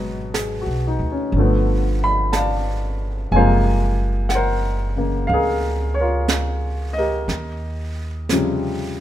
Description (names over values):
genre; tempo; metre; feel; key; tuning
jazz ballad; 60 BPM; 4/4; swing 69% on 8ths; unclear; A4 = 445 Hz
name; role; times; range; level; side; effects
warm baby grand piano; accompaniment; 0.0-9.0 s; Cb3 to B5; -21 LUFS; left 1 dB; none
upright bass; bass; 0.0-9.0 s; Gb1 to Eb2; -22 LUFS; right 1 dB; none
jazz brush drum kit; drums; 0.3-9.0 s; brushed snare drum, hi-hat, snare drum; -28 LUFS; right 4 dB; none
room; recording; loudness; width
little or no reverb; minimal, uncompressed stereo recording; -18 LUFS; side -12 dB against mid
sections
0.0-9.0 A section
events
none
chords
0.0 Abm7; 1.3 G9; 3.3 Gbmaj9#11; 7.3 Eb13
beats
0.33 1.33 2.33 | 3.32 4.31 5.30 6.30 | 7.29 8.30